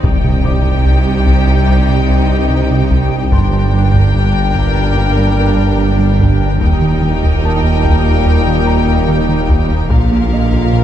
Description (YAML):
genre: cinematic, hybrid orchestral and electronic film score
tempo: 73 BPM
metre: 4/4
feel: straight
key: unclear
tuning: A4 = 440 Hz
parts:
  - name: warm symphonic violin section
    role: melody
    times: 0.0-10.8 s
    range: F5 to G5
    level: -22 LUFS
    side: left 7 dB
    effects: none
  - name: rich studio violin section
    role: second line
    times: 0.0-10.8 s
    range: G4 to Bb4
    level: -27 LUFS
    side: left 5 dB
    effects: none
  - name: rich symphonic viola section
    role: accompaniment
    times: 0.0-10.8 s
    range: D3 to Eb4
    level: -26 LUFS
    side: right 1 dB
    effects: none
  - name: mellow French horn section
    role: sustained chords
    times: 0.0-10.8 s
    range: D3 to Eb4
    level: -23 LUFS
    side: left 3 dB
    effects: none
  - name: mellow trombone section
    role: sustained chords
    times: 0.0-10.8 s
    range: G2 to G3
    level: -24 LUFS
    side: right 1 dB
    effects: none
  - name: warbly tape-like pad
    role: sustained chords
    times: 0.0-10.8 s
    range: D3 to C5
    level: -23 LUFS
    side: equal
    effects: chorus, built-in reverb
  - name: round analog bass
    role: riff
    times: 0.0-10.8 s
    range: C2 to Bb3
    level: -17 LUFS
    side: right 1 dB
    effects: none
  - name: mellow tuba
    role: bass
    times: 0.0-10.8 s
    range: G1 to Eb2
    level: -20 LUFS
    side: right 3 dB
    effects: none
  - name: pure sine sub bass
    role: bass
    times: 0.0-10.8 s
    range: Eb1 to C2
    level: -18 LUFS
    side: left 1 dB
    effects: none
  - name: warm symphonic cello section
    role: bass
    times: 0.0-10.8 s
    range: Eb2 to C3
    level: -20 LUFS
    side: right 2 dB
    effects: none
  - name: warm symphonic double bass section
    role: bass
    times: 0.0-10.8 s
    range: G1 to Eb2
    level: -19 LUFS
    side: right 3 dB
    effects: none
  - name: taiko ensemble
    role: drums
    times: 0.0-10.8 s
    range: none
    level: -18 LUFS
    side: left 1 dB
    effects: none
  - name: impact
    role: sound effects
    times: 0.0-3.3 s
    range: none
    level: -23 LUFS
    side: left 1 dB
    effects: none
  - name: dark grand piano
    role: texture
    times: 0.0-10.8 s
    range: Bb4 to D6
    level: -29 LUFS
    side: left 2 dB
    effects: none
room: moderate scoring stage reverb, RT60 1.6 s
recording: dark, warm production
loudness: -10 LUFS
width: side -10 dB against mid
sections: 0.0-10.8 A section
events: impact 0.0-3.3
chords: 0.0 Cmadd9; 3.3 Gm; 6.6 Eb; 9.9 Bb